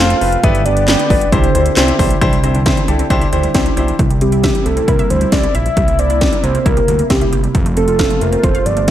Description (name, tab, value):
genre	synth-pop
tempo	135 BPM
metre	4/4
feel	straight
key	C major, C mixolydian from 4.0 s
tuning	A4 = 442 Hz
part	soft octave-layered synth lead	melody	0.0-8.9 s	G4 to F5	-17 LUFS	equal	chorus
part	clear baby grand piano	accompaniment	0.0-3.9 s	B3 to C5	-18 LUFS	left 2 dB	none
part	phased analog pad	sustained chords	0.0-8.9 s	C3 to G4	-22 LUFS	right 2 dB	phaser, chorus
part	fat analog bass	bass	0.0-8.9 s	F1 to D2	-17 LUFS	equal	none
part	house drum kit	drums	0.1-8.9 s	handclaps, hi-hat, kick drum, snare drum	-16 LUFS	equal	overdrive, gated reverb
part	wide unison pluck	arpeggios	2.2-8.9 s	E3 to F5	-24 LUFS	right 3 dB	tape echo
room	light reverb, digital ambience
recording	none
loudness	-11 LUFS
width	side -12 dB against mid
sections	0.0-2.2 A section; 2.2-4.0 B section; 4.0-8.9 C section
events	none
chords	0.4 G; 1.3 Cadd9; 4.0 C; 5.8 C7; 7.5 F